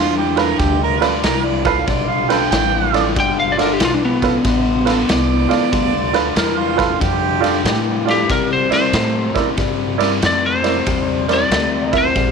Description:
electric blues shuffle; 94 BPM; 4/4; swing 65% on 8ths; G mixolydian; A4 = 442 Hz
lightly driven lead guitar; melody; 0.0-12.3 s; B3 to G5; -18 LUFS; left 1 dB
mellow harmonica; second line; 0.0-8.0 s; F4 to G5; -21 LUFS; right 11 dB
electric guitar through a small old amp; riff; 0.0-12.3 s; G2 to A3; -21 LUFS; left 14 dB; phaser
upright bass; bass; 0.0-12.3 s; G1 to C3; -24 LUFS; right 1 dB
warm upright piano; accompaniment; 0.4-12.0 s; E4 to E5; -21 LUFS; right 12 dB
raw garage drum kit; drums; 0.4-12.3 s; kick drum, ride cymbal, snare drum; -21 LUFS; equal
light reverb, studio reverb; 1960s-style stereo with parts hard left and right; -14 LUFS; side -5 dB against mid
0.0-12.3 A section
0.0 G9; 8.3 C9

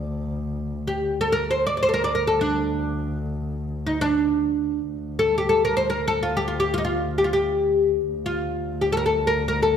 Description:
Arabic maqam ensemble; free time; D minor; A4 = 443 Hz
oud; melody; 0.0-9.8 s; D4 to D5; -21 LUFS; equal
dark double bass; drone; 0.0-9.8 s; D2; -30 LUFS; left 1 dB
moderate recital hall reverb, RT60 1.4 s; -21 LUFS; side -8 dB against mid
0.0-4.9 A section; 4.9-9.8 A section

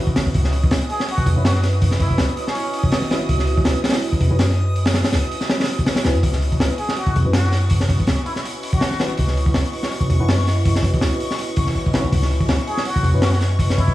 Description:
drum and bass, jungle; 163 BPM; 4/4; swing 54% on 16ths; C# minor; A4 = 444 Hz
warbly tape-like pad; sustained chords; 0.0-13.9 s; C#4 to D#5; -28 LUFS; right 1 dB; chorus, built-in reverb, phaser, vintage 12-bit sampler grit
warm 808-style bass; bass; 0.0-13.9 s; G#1 to F#2; -19 LUFS; equal; tube saturation
backwards swelling texture; texture; 0.0-13.9 s; C#6 to D#6; -32 LUFS; equal; built-in reverb
crunchy breakbeat drum kit; drums; 0.1-13.9 s; hi-hat, kick drum, snare drum; -20 LUFS; equal
trumpet with plunger mute; melody; 0.9-2.8, 6.8-9.0, 12.7-13.9 s; C#4 to G#4; -27 LUFS; equal; dub echo
deep mellow chord stab; stabs; 1.4-13.2 s; C#4 to B4; -30 LUFS; left 2 dB; chorus, phaser, dub echo
light reverb, studio reverb; vinyl crackle, small room reverb; -16 LUFS; side -15 dB against mid
0.0-13.9 A section
0.0 C#m11

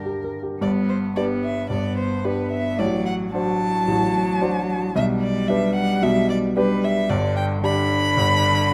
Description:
quick classical-period movement for piano trio; 111 BPM; 4/4; straight; G major; A4 = 441 Hz
dark violin; melody; 0.0-8.7 s; B4 to B5; -27 LUFS; equal
rich cello; second line; 0.0-8.7 s; D3 to Bb4; -26 LUFS; equal
clear grand piano; accompaniment; 0.0-8.7 s; G1 to D5; -25 LUFS; equal
moderate recital hall reverb, RT60 1.5 s; close, detailed microphones; -21 LUFS; mono
0.6-8.7 A section
0.0 Gm; 0.6 G; 2.8 D7/A; 5.0 G/B; 7.1 G

